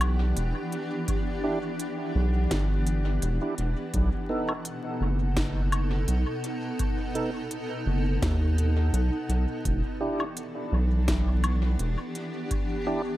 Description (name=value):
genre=ambient dub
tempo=84 BPM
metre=4/4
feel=swing 54% on 16ths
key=E minor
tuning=A4 = 443 Hz
part: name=granular cloud pad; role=sustained chords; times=0.0-13.2 s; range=B2 to F#5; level=-32 LUFS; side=equal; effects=built-in reverb
part: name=round analog bass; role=bass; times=0.0-12.0 s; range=E1 to D#2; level=-24 LUFS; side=equal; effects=none
part: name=organic electronic drum kit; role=drums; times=0.0-12.7 s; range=hi-hat, snare drum, woodblock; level=-35 LUFS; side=left 1 dB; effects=overdrive, dub echo
part: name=electronic kick drum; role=drums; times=1.1-12.7 s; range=none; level=-32 LUFS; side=equal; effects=none
part: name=tonewheel organ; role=stabs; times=1.4-13.0 s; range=B3 to A4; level=-34 LUFS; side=right 2 dB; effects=overdrive, chorus vibrato, slow rotary speaker, dub echo
room=little or no reverb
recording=vinyl crackle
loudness=-25 LUFS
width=side -15 dB against mid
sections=0.0-13.2 A section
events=none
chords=0.0 Em7; 3.9 B7; 9.7 Em7